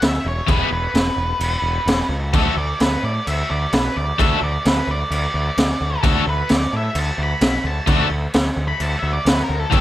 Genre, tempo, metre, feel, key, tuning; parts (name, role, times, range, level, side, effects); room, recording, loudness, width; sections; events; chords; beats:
garage rock duo or trio; 130 BPM; 4/4; straight; A4 = 440 Hz
octave-fuzz lead guitar; melody; 0.0-9.8 s; G4 to B5; -24 LUFS; equal; distortion
growling picked electric bass; bass; 0.0-9.8 s; E1 to A2; -23 LUFS; equal; overdrive
raw garage drum kit; drums; 0.0-9.8 s; crash cymbal, kick drum, snare drum; -20 LUFS; equal
biting overdriven guitar; riff; 0.5-9.8 s; A2 to A4; -20 LUFS; left 2 dB; tremolo
studio ambience; -17 LUFS; side -14 dB against mid
0.0-9.8 A section
lead electric guitar solo 0.0-9.8
0.0 E; 2.3 D5
0.03 | 0.49 0.95 1.41 1.88 | 2.34 2.80 3.26 3.72 | 4.18 4.65 5.11 5.57 | 6.03 6.49 6.95 7.41 | 7.87 8.34 8.80 9.26 | 9.72